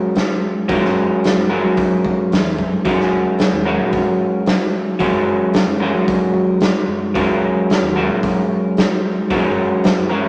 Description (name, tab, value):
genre	psychedelic rock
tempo	112 BPM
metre	4/4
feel	straight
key	F# major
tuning	A4 = 440 Hz
part	electric guitar through a small old amp	riff	0.0-10.3 s	F#3 to A#4	-19 LUFS	equal	none
part	raw garage drum kit	drums	0.2-10.0 s	hi-hat, kick drum, snare drum	-22 LUFS	equal	none
part	picked electric bass	bass	0.7-10.3 s	C#2 to F#3	-26 LUFS	equal	none
room	moderate studio reverb, RT60 0.6 s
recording	none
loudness	-17 LUFS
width	mono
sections	0.0-10.3 A section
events	none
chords	0.0 F#add9